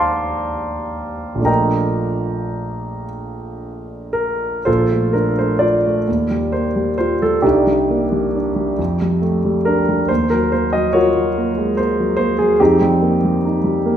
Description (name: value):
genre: classical, impressionist solo piano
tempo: 35-50 BPM (dotted quarters)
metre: 6/8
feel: rubato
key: Bb major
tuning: A4 = 440 Hz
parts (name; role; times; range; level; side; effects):
- warm concert grand piano; solo; 0.0-14.0 s; Bb1 to D6; -15 LUFS; equal; none
room: wet recital hall reverb, RT60 1.7 s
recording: minimal, uncompressed stereo recording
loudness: -15 LUFS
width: side -9 dB against mid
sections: 0.0-4.7 A section; 4.7-14.0 A section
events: none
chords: 0.0 Ebmaj7; 1.5 Bbmaj7; 6.1 Ebadd9; 7.4 Cm9; 8.8 F13; 10.1 Ebm9; 12.6 F9sus4